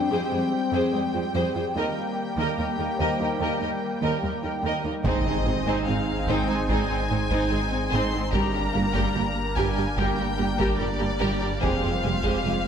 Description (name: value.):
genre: cinematic, hybrid orchestral and electronic film score.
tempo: 73 BPM.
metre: 4/4.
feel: straight.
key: unclear.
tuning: A4 = 440 Hz.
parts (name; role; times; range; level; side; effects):
rich chamber violin section; melody; 0.0-12.7 s; D5 to C6; -32 LUFS; left 4 dB; none.
mellow French horn section; sustained chords; 0.0-11.9 s; G3 to D4; -32 LUFS; left 5 dB; none.
warm analog pad; sustained chords; 0.0-12.7 s; G3 to G5; -31 LUFS; right 1 dB; chorus.
resonant blip pluck; arpeggios; 0.0-12.6 s; Eb3 to Ab4; -34 LUFS; right 2 dB; chorus, ping-pong delay.
dark baby grand piano; texture; 0.0-12.7 s; C4 to G5; -43 LUFS; left 1 dB; none.
rich symphonic violin section; second line; 0.1-12.5 s; G4 to Eb5; -32 LUFS; left 2 dB; none.
rich symphonic viola section; accompaniment; 0.1-12.5 s; G3 to Bb4; -30 LUFS; right 2 dB; none.
rich symphonic cello section; bass; 0.1-12.5 s; Eb2 to Ab2; -32 LUFS; right 3 dB; none.
rich symphonic double bass section; bass; 5.0-12.5 s; F1 to Ab1; -32 LUFS; right 4 dB; none.
saturated sub bass; bass; 5.0-12.7 s; F1 to Ab1; -32 LUFS; right 1 dB; none.
taiko ensemble; drums; 5.0-12.7 s; none; -32 LUFS; equal; none.
impact; sound effects; 5.0-8.3 s; none; -34 LUFS; equal; none.
room: wet scoring stage reverb, RT60 1.6 s.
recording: none.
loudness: -22 LUFS.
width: side -8 dB against mid.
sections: 0.0-5.0 A section; 5.0-12.7 B section.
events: impact 5.0-8.3.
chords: 0.0 Fmadd9; 1.8 Eb; 5.0 Ab; 8.3 Gm; 11.6 Fmadd9.